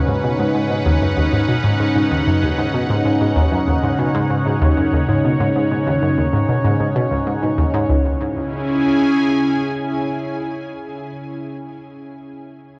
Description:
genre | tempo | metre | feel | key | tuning
ambient, sequencer-driven space music | 96 BPM | 4/4 | straight | C# minor | A4 = 439 Hz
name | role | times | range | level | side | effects
phased analog pad | sustained chords | 0.0-11.2 s | Db3 to G#5 | -21 LUFS | equal | phaser, chorus
analog pluck | riff | 0.0-8.2 s | C#2 to B2 | -21 LUFS | equal | chorus, tape echo
room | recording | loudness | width
wet huge ambient reverb, RT60 7.9 s | worn, warbling old tape, cassette tape, warbly pitch drift | -18 LUFS | mono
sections
0.0-7.9 A section; 7.9-10.4 B section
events
filter sweep on synth arpeggio sound 0.0-7.9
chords
0.0 G#m7; 7.9 C#m

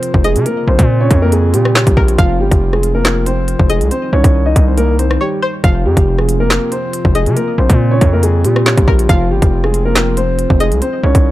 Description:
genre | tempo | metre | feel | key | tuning
hip hop, drill | 139 BPM | 4/4 | half-time | F minor | A4 = 440 Hz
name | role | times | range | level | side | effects
dark concert grand piano | melody | 0.0-11.3 s | F3 to Eb5 | -17 LUFS | equal | none
dark analog pad | sustained chords | 0.0-11.3 s | C3 to F4 | -22 LUFS | left 1 dB | chorus
drill drum kit | drums | 0.0-11.2 s | handclaps, hi-hat, kick drum, rim click, snare drum | -13 LUFS | equal | none
distorted 808-style bass | bass | 0.1-11.3 s | F1 to C3 | -14 LUFS | equal | distortion
string-like resonator pluck | second line | 0.2-10.8 s | Bb4 to F5 | -22 LUFS | left 2 dB | chorus, tape echo
room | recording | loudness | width
digital ambience | dark, warm production | -10 LUFS | side -16 dB against mid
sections
0.0-11.3 A section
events
break 5.2-5.6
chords
0.5 Bbmadd9; 2.2 Fm; 3.9 Cm; 5.6 Fm; 7.4 Bbmadd9; 9.1 Fm

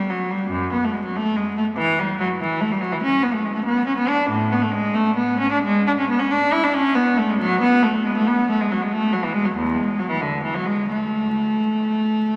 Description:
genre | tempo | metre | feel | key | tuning
classical, baroque-style suite movement for unaccompanied cello | 92 BPM (dotted quarters) | 12/8 | uneven beats, rubato | A major from 3.0 s | A4 = 435 Hz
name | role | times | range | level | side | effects
rich cello | solo | 0.0-12.4 s | E2 to E4 | -21 LUFS | equal | none
room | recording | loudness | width
wet cathedral reverb, RT60 6.8 s | vinyl crackle | -21 LUFS | mono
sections
0.0-12.4 A section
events
none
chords
none

